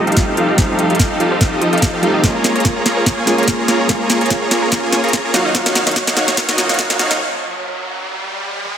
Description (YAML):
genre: future bass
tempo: 145 BPM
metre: 4/4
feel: swing 55% on 16ths, half-time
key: unclear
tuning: A4 = 438 Hz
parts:
  - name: felt-muted upright piano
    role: accompaniment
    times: 0.0-8.8 s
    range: F#3 to E#4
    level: -23 LUFS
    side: equal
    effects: sidechain pumping, digital delay
  - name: airy breathy pad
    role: sustained chords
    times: 0.0-8.8 s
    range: F#3 to Eb5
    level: -27 LUFS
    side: right 1 dB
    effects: none
  - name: supersaw chords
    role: riff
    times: 0.0-7.2 s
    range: D#3 to A#5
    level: -17 LUFS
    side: equal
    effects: cassette tape, sidechain pumping, low-pass filter, digital delay
  - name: wide unison pluck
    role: arpeggios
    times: 0.1-7.1 s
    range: F4 to F#5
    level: -25 LUFS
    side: right 2 dB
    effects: none
  - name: trap drum kit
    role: drums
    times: 0.1-8.7 s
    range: hi-hat, snare drum, toms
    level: -18 LUFS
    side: equal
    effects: none
  - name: electronic kick drum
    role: drums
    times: 0.2-6.9 s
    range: none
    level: -18 LUFS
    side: equal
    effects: none
  - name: riser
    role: sound effects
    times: 4.6-8.8 s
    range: none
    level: -28 LUFS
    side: right 1 dB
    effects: none
room: moderate lush hall reverb, RT60 2.0 s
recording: high-pass filter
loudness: -13 LUFS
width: side -8 dB against mid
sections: 0.0-8.8 A section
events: build-up 0.0-8.8; drum fill 0.0-7.2; filter sweep on supersaw synth 0.0-8.8; filter sweep 0.0-8.8; riser 4.6-8.8; break 7.2-8.8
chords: 0.0 F7; 2.2 A#m7; 5.3 D#m7